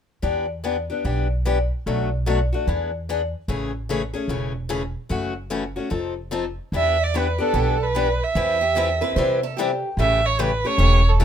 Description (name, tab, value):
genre	acoustic string swing (jazz manouche)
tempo	148 BPM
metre	4/4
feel	swing 64% on 8ths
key	E minor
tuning	A4 = 440 Hz
part	picked steel-string acoustic guitar	accompaniment	0.2-11.2 s	B2 to B4	-24 LUFS	left 4 dB	none
part	upright bass	bass	0.2-11.2 s	E1 to C3	-24 LUFS	equal	none
part	warm violin	melody	6.8-11.2 s	A4 to E5	-21 LUFS	right 4 dB	none
part	picked acoustic archtop guitar	second line	8.6-9.9 s	G4 to C5	-27 LUFS	right 3 dB	none
room	light reverb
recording	minimal, uncompressed stereo recording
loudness	-20 LUFS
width	side -9 dB against mid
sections	0.2-6.7 A section; 6.7-11.2 B section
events	none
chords	0.2 Em7; 1.9 Bm7; 2.7 E7; 3.5 Amaj7; 5.1 F#m7; 5.9 F7; 6.7 Em7; 8.4 Cmaj7/E; 10.0 A7